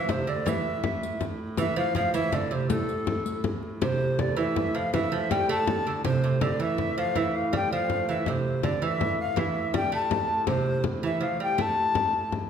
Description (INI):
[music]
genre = medieval dance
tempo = 108 BPM (dotted quarters)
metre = 6/8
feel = straight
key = A minor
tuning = A4 = 440 Hz
[part]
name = mellow tenor recorder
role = melody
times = 0.0-12.3 s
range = A4 to A5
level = -28 LUFS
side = left 2 dB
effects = none
[part]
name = lute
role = second line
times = 0.0-12.3 s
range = A2 to A3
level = -28 LUFS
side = right 4 dB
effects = none
[part]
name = rich hurdy-gurdy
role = drone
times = 0.0-12.5 s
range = A2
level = -36 LUFS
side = right 1 dB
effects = none
[part]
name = frame drum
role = percussion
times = 0.1-12.5 s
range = none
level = -31 LUFS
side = left 4 dB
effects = none
[part]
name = riq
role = percussion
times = 0.1-3.4 s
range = none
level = -36 LUFS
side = left 5 dB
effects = none
[sound]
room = wet recital hall reverb, RT60 1.3 s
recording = none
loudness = -24 LUFS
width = side -8 dB against mid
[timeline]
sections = 0.0-3.8 A section; 3.8-12.5 B section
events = none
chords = none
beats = | 0.47 1.03 | 1.59 2.15 | 2.71 3.26 | 3.82 4.38 | 4.94 5.49 | 6.05 6.60 | 7.16 7.71 | 8.27 8.82 | 9.38 9.93 | 10.48 11.04 | 11.59 12.14